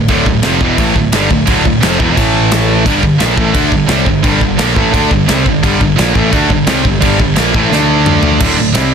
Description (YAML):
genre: heavy metal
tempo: 173 BPM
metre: 4/4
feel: straight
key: unclear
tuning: A4 = 444 Hz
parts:
  - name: distorted electric guitar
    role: riff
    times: 0.0-8.9 s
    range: D2 to D4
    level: -16 LUFS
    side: left 10 dB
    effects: distortion
  - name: heavy high-gain guitar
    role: riff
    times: 0.0-8.9 s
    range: D2 to D4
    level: -14 LUFS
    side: right 11 dB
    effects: distortion
  - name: sludgy distorted guitar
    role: riff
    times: 0.0-8.4 s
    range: D2 to D4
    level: -18 LUFS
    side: equal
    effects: overdrive
  - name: picked electric bass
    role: bass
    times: 0.0-8.9 s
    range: D1 to D2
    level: -18 LUFS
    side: equal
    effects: none
  - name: modern studio drum kit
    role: drums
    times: 0.1-8.8 s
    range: crash cymbal, kick drum, ride cymbal, snare drum, toms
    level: -14 LUFS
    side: equal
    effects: none
room: light reverb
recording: dense, heavily limited modern master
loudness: -9 LUFS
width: side -7 dB against mid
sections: 0.0-8.4 A section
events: drum fill 7.7-8.4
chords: 0.0 Dm; 2.2 A5; 2.9 G5; 7.7 D5